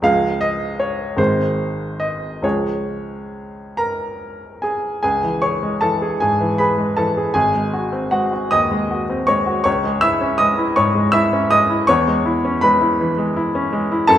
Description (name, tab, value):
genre	classical, romantic character piece for solo piano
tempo	44-55 BPM (dotted quarters)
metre	6/8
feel	rubato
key	Db major, C# minor from 5.0 s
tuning	A4 = 440 Hz
part	bright upright piano	solo	0.0-14.2 s	Ab1 to E6	-16 LUFS	equal	none
room	wet recital hall reverb, RT60 1.5 s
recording	none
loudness	-16 LUFS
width	side -11 dB against mid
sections	0.0-5.0 A section; 5.0-14.2 B section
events	none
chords	0.0 Db; 1.2 Ab; 2.4 Db; 5.0 C#m; 7.3 G#7; 9.7 C#m; 11.9 C#m/E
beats	| 0.03 1.18 | 2.44 3.77 | 5.03 6.20 | 7.35 8.53 | 9.66 10.76 | 11.88 12.99 | 14.10